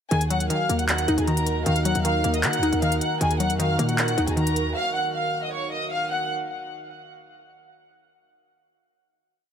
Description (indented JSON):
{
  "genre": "hip hop, trap",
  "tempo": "155 BPM",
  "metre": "4/4",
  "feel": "half-time",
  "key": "Eb minor",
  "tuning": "A4 = 441 Hz",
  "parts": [
    { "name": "dark studio violin section", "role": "melody", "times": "0.1-6.3 s", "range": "Ab4 to Gb6", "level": "-26 LUFS", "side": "left 1 dB", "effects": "ping-pong delay" },
    { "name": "hollow square pluck", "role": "accompaniment", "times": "0.1-5.3 s", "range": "Eb3 to Eb4", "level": "-25 LUFS", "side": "left 2 dB", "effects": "chorus" },
    { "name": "dark analog pad", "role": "sustained chords", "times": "0.1-6.3 s", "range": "Eb3 to Bb4", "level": "-31 LUFS", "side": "right 4 dB", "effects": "chorus" },
    { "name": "hard-hitting 808-style bass", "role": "bass", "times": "0.1-4.7 s", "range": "Eb2 to Eb3", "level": "-27 LUFS", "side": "right 1 dB", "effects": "none" },
    { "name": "trap drum kit", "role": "drums", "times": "0.1-4.7 s", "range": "handclaps, hi-hat", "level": "-27 LUFS", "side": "equal", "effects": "none" }
  ],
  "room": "light reverb",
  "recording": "none",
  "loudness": "-21 LUFS",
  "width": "side -8 dB against mid",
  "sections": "0.1-6.3 hook",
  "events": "none",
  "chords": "0.1 Ebm",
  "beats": "| 0.11 0.50 0.89 1.27 | 1.66 2.05 2.44 2.82 | 3.21 3.60 3.98 4.37 | 4.76 5.14 5.53 5.92"
}